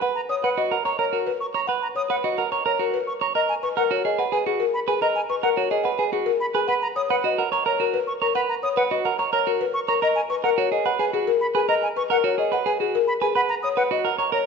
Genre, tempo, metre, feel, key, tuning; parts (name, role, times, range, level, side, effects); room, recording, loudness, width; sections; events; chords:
classical, minimalist pattern music; 108 BPM; 3/4; straight; B major; A4 = 440 Hz
buzzing marimba with soft mallets; melody; 0.0-14.5 s; G#4 to A#5; -24 LUFS; left 6 dB
clean electric guitar; arpeggios; 0.0-14.5 s; F#4 to C#5; -24 LUFS; right 9 dB
silver concert flute; arpeggios; 0.2-14.4 s; F#5 to D#6; -28 LUFS; equal
wet recital hall reverb, RT60 1.6 s; nothing above 7.7 kHz; -20 LUFS; side -5 dB against mid
0.0-14.5 A section
0.0 Bmaj7(no3); 3.4 G#m9; 6.7 Bmaj7(no3); 10.0 G#m9; 13.4 Bmaj7(no3)